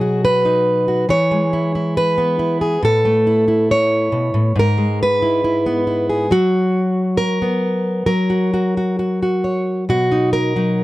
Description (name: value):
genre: folk, solo fingerstyle acoustic guitar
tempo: 69 BPM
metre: 4/4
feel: rubato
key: B major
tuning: A4 = 441 Hz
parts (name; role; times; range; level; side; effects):
- fingerpicked plugged-in steel-string acoustic guitar; solo; 0.0-10.8 s; G#2 to C#5; -15 LUFS; equal; none
room: little or no reverb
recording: dry, close 1970s-style studio recording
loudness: -15 LUFS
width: side -17 dB against mid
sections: 0.0-9.9 A section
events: none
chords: 0.0 B6; 1.1 E; 2.8 Aadd9; 4.6 E/G#; 6.3 B5/F#; 8.1 F#; 9.9 B